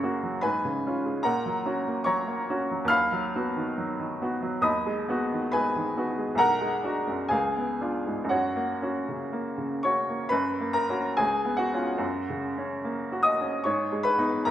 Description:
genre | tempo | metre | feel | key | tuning
classical, romantic character piece for solo piano | 58-76 BPM | 2/4 | rubato | F# major | A4 = 440 Hz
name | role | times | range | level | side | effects
bright upright piano | solo | 0.0-14.5 s | B1 to E#6 | -25 LUFS | equal | none
room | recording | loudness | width
moderate scoring stage reverb, RT60 1.7 s | none | -25 LUFS | side -11 dB against mid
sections
0.0-10.3 A section; 10.3-14.5 B section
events
none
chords
0.4 Db7/Ab; 1.3 Gb/Bb; 2.9 B/D#; 4.7 G#m7/D#; 6.4 G#m7b5/B; 7.3 C#7b9; 8.3 F#; 11.2 C#7; 12.0 F#; 13.7 G#m

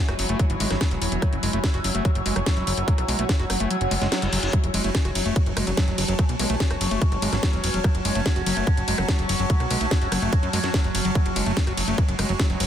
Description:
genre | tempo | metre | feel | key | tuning
psychedelic trance | 145 BPM | 4/4 | straight | F# minor | A4 = 441 Hz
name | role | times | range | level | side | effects
overtone-sweeping drone | sustained chords | 0.0-12.7 s | F#3 to E4 | -29 LUFS | equal | chorus, built-in reverb, vintage 12-bit sampler grit, sidechain pumping
airy breathy pad | texture | 0.1-12.7 s | F#4 to C#6 | -32 LUFS | equal | chorus, sidechain pumping
overdriven acid bass | riff | 0.1-12.7 s | E3 to F#4 | -30 LUFS | moving between left 4 dB and right 3 dB | auto-pan, sidechain pumping, dub echo
plucky analog bass | bass | 0.1-12.7 s | E1 to F#2 | -27 LUFS | equal | none
garage drum kit | drums | 0.1-12.7 s | hi-hat, ride cymbal, rim click, snare drum | -28 LUFS | left 1 dB | none
electronic kick drum | drums | 0.4-12.5 s | none | -22 LUFS | equal | none
reverse cymbal | sound effects | 3.9-4.5 s | none | -33 LUFS | left 2 dB | none
vowel-sweep wobble bass | second line | 6.0-7.7, 12.6-12.7 s | A3 to B3 | -41 LUFS | left 4 dB | none
room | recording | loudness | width
light reverb | dense, heavily limited modern master | -20 LUFS | side -10 dB against mid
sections
0.0-12.7 A section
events
kick drops out 3.7-4.5; reverse cymbal 3.9-4.5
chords
0.0 F#5

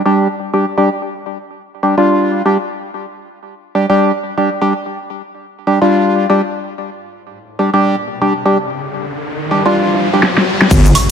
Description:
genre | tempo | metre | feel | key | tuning
bass house | 125 BPM | 4/4 | swing 61% on 16ths | unclear | A4 = 440 Hz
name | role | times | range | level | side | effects
percussive organ stab | stabs | 0.0-10.3 s | G3 to G4 | -13 LUFS | equal | wide subtle chorus, sidechain pumping, ping-pong delay
riser and impact | sound effects | 8.0-11.1 s | none | -19 LUFS | left 1 dB | none
big-room dance drum kit | drums | 10.2-11.1 s | cabasa, crash cymbal, hi-hat, snare drum, woodblock | -12 LUFS | equal | overdrive, low-pass filter on snare, low-pass filter on cymbals, low-pass filter on perc, low-pass filter on hats
wobble bass | bass | 10.7-10.9 s | G1 | -11 LUFS | equal | chorus, overdrive, sidechain pumping
electronic kick drum | drums | 10.7-10.8 s | none | -11 LUFS | equal | overdrive
room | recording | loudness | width
moderate lush hall reverb, RT60 1.9 s, digital ambience | none | -12 LUFS | side -7 dB against mid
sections
0.0-10.7 A section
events
filter sweep on synth stab 0.0-10.7; riser 8.0-10.7; drum fill 10.2-10.7; impact 10.7-11.1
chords
0.0 G5

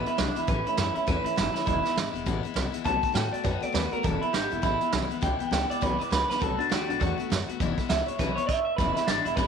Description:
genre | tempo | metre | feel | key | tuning
rockabilly | 202 BPM | 4/4 | swing 60% on 8ths | E major | A4 = 439 Hz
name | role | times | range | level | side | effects
electric guitar through a small old amp | melody | 0.0-9.5 s | D4 to A5 | -28 LUFS | right 2 dB | spring reverb, tape echo
picked steel-string acoustic guitar | accompaniment | 0.0-9.5 s | E2 to F#4 | -33 LUFS | left 12 dB | none
upright bass | bass | 0.0-9.5 s | E1 to A2 | -31 LUFS | equal | none
vintage brush drum kit | drums | 0.1-9.5 s | crash cymbal, hi-hat, kick drum, snare drum | -30 LUFS | right 4 dB | none
room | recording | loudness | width
light reverb, studio reverb | 1960s-style stereo | -24 LUFS | side -6 dB against mid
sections
0.0-8.8 A section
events
none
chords
0.5 A; 1.7 E; 2.9 B7; 4.0 E; 6.4 B7; 7.6 E

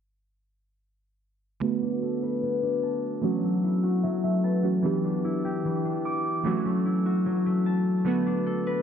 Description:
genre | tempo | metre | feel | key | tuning
hip hop | 149 BPM | 4/4 | half-time | B minor | A4 = 438 Hz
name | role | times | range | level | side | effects
glassy digital keys | accompaniment | 1.6-8.8 s | D3 to F#5 | -29 LUFS | right 7 dB | chorus, low-pass filter
concert harp | arpeggios | 1.6-8.8 s | E3 to D6 | -25 LUFS | left 3 dB | low-pass filter, tape echo
room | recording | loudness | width
moderate scoring stage reverb, RT60 1.8 s, studio reverb | none | -24 LUFS | side -8 dB against mid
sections
1.6-8.8 A section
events
filter sweep 1.6-8.8; synth keys fill 3.6-4.8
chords
1.6 Bm7; 3.2 F#m7; 4.8 Em7; 6.5 F#m7; 8.1 Bm7

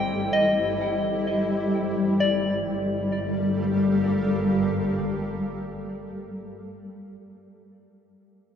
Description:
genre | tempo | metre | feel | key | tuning
ambient | 65 BPM | 3/4 | straight | G minor | A4 = 440 Hz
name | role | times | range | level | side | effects
granular cloud pad | sustained chords | 0.0-5.7 s | G3 to F5 | -25 LUFS | left 1 dB | built-in reverb
soft synth bell | arpeggios | 0.0-7.5 s | D5 to G5 | -27 LUFS | left 2 dB | chorus, analog delay
rich studio double bass section | bass | 0.0-5.7 s | G1 | -34 LUFS | equal | none
room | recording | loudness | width
wet plate reverb, RT60 3.5 s | echo-heavy mix | -22 LUFS | side -8 dB against mid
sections
0.0-2.2 A section; 2.2-5.0 B section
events
none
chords
0.0 Am7/G; 2.2 Gm9

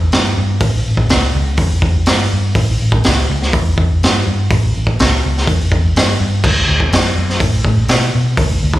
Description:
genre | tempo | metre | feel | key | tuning
blues rock power trio and southern rock | 124 BPM | 4/4 | straight | A mixolydian | A4 = 440 Hz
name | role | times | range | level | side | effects
fingered electric bass | bass | 0.0-8.8 s | A1 to B2 | -15 LUFS | equal | none
raw garage drum kit | drums | 0.1-8.8 s | crash cymbal, hi-hat, kick drum, snare drum | -14 LUFS | equal | none
room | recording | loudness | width
little or no reverb | live gig heard through the venue's PA, club reverb | -12 LUFS | side -15 dB against mid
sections
0.0-8.8 A section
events
none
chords
none

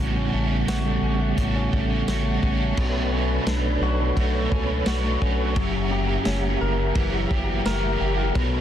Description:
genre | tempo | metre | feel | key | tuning
dream pop | 86 BPM | 4/4 | straight | B minor | A4 = 444 Hz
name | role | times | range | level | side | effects
cranked stack guitar | accompaniment | 0.0-8.6 s | A2 to C#5 | -29 LUFS | right 5 dB | overdrive, tremolo, ensemble chorus
mellow tonewheel organ | sustained chords | 0.0-8.6 s | C#3 to B5 | -28 LUFS | right 1 dB | chorus vibrato, fast rotary speaker
direct-recorded clean electric guitar | arpeggios | 0.0-8.6 s | F#2 to A#4 | -27 LUFS | left 3 dB | analog chorus, ping-pong delay
round analog bass | bass | 0.0-8.6 s | F#1 to C#2 | -26 LUFS | equal | none
vintage drum kit | drums | 0.7-8.5 s | crash cymbal, hi-hat, kick drum, ride cymbal, snare drum, tambourine | -28 LUFS | equal | none
room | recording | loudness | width
light reverb, studio ambience | dense, heavily limited modern master | -21 LUFS | side -10 dB against mid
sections
0.0-2.8 A section; 2.8-8.6 B section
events
none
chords
0.0 A13; 2.8 Bm9; 5.6 F#7b9

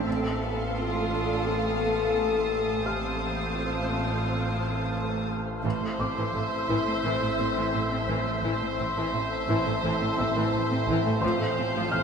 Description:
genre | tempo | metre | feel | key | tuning
cinematic, suspense film score | 86 BPM | 4/4 | straight | A minor | A4 = 439 Hz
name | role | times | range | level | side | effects
dark symphonic violin section | melody | 0.0-12.0 s | E5 to F5 | -38 LUFS | left 4 dB | none
mellow clarinet | second line | 0.0-4.9 s | F4 to A4 | -31 LUFS | left 5 dB | none
warm chamber viola section | accompaniment | 0.0-12.0 s | E3 to C5 | -32 LUFS | left 1 dB | none
wind-like tuned noise texture | sustained chords | 0.0-12.0 s | A4 to C6 | -34 LUFS | equal | built-in reverb
rich symphonic cello section | bass | 0.0-12.0 s | A2 to D4 | -35 LUFS | right 4 dB | none
warm symphonic double bass section | bass | 0.0-12.0 s | A1 | -35 LUFS | right 3 dB | none
overtone-sweeping drone | drone | 0.1-12.0 s | A1 | -33 LUFS | right 1 dB | chorus, built-in reverb
dark chamber violin section | texture | 0.1-10.8 s | A5 to E6 | -37 LUFS | left 2 dB | none
felt-muted upright piano | texture | 2.9-12.0 s | C6 to F6 | -37 LUFS | left 1 dB | none
clear studio violin section | second line | 5.6-12.0 s | C5 | -32 LUFS | right 1 dB | none
mellow French horn section | sustained chords | 5.6-12.0 s | C4 to F4 | -34 LUFS | left 1 dB | none
room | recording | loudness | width
wet scoring stage reverb, RT60 1.9 s | none | -25 LUFS | side -6 dB against mid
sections
0.0-5.6 A section; 5.6-12.0 A section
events
none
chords
0.1 F/A; 5.6 Am; 11.2 F/A

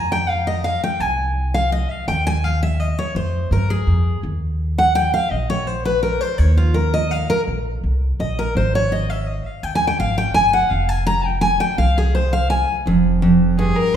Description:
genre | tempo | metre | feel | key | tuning
bluegrass | 167 BPM | 3/4 | straight | F minor | A4 = 439 Hz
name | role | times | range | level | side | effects
picked steel-string acoustic guitar | accompaniment | 0.0-13.9 s | F2 to Bb5 | -18 LUFS | equal | none
upright bass | bass | 0.0-14.0 s | F1 to G2 | -20 LUFS | equal | none
bright fiddle | melody | 13.6-14.0 s | Ab4 to Bb4 | -19 LUFS | left 3 dB | none
room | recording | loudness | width
wet recital hall reverb, RT60 1.5 s | recorded in a church or concert hall | -16 LUFS | side -9 dB against mid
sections
0.0-4.2 A section; 4.2-12.9 A section; 12.9-14.0 B section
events
steel-string acoustic guitar solo 0.0-12.9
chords
0.0 Fm; 2.1 Eb9; 3.2 Fm; 4.2 Eb5; 8.6 Ab5; 10.7 F5; 12.9 Fsus2

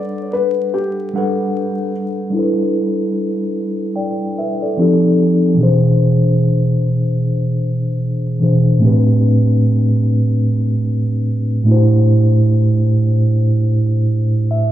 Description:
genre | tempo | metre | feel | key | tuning
hip hop | 74 BPM | 4/4 | swing 61% on 16ths | G major | A4 = 439 Hz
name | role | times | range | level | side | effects
felt-muted upright piano | melody | 0.0-1.9 s | G4 to D5 | -21 LUFS | left 4 dB | plate reverb, analog delay
mellow tine electric piano | accompaniment | 0.0-14.7 s | A2 to G5 | -13 LUFS | equal | medium stereo tremolo, cassette tape
room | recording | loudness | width
wet studio reverb, RT60 0.6 s | vinyl crackle, low-pass filter, small room reverb | -13 LUFS | side -12 dB against mid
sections
0.0-2.3 A section; 2.3-14.7 B section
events
tine electric piano fill 14.1-14.7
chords
0.0 Gmaj9; 2.3 G69; 4.8 F9; 5.6 E7b13; 8.8 Am11; 11.7 D9sus4/A

